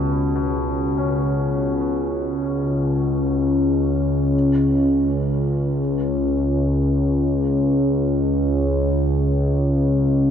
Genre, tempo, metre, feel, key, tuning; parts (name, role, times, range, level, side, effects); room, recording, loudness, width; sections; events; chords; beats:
dark ambient drone; free time; A4 = 440 Hz
warm concert grand piano; arpeggios; 0.0-10.3 s; B2 to C#4; -29 LUFS; left 3 dB; ping-pong delay
analog drone; drone; 0.0-10.3 s; C#2 to C#3; -18 LUFS; equal; chorus
wet huge ambient reverb, RT60 8.3 s; worn, warbling old tape, cassette tape, warbly pitch drift; -18 LUFS; side -8 dB against mid
0.0-10.3 A section
0.0 Bsus2/C#
free time